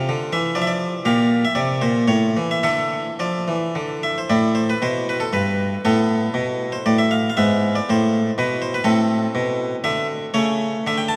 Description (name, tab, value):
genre	classical, baroque-style suite movement for harpsichord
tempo	107-124 BPM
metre	3/4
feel	rubato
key	D minor, A minor from 4.3 s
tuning	A4 = 445 Hz
part	harpsichord	solo	0.0-11.2 s	G2 to A5	-20 LUFS	equal	none
room	wet cathedral reverb, RT60 5.4 s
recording	vinyl crackle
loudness	-20 LUFS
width	mono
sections	0.0-4.3 A section; 4.3-11.2 A section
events	none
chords	0.0 Dm; 1.1 Gm/Bb; 2.1 A; 2.7 Dm; 4.3 A5; 5.8 Asus2; 7.4 E(b13)/G#; 8.9 Am; 10.3 A7/C#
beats	0.08 0.58 | 1.07 1.58 2.11 | 2.65 3.21 3.77 | 4.31 4.83 5.34 | 5.84 6.36 6.87 | 7.38 7.87 8.37 | 8.87 9.35 9.84 | 10.35 10.85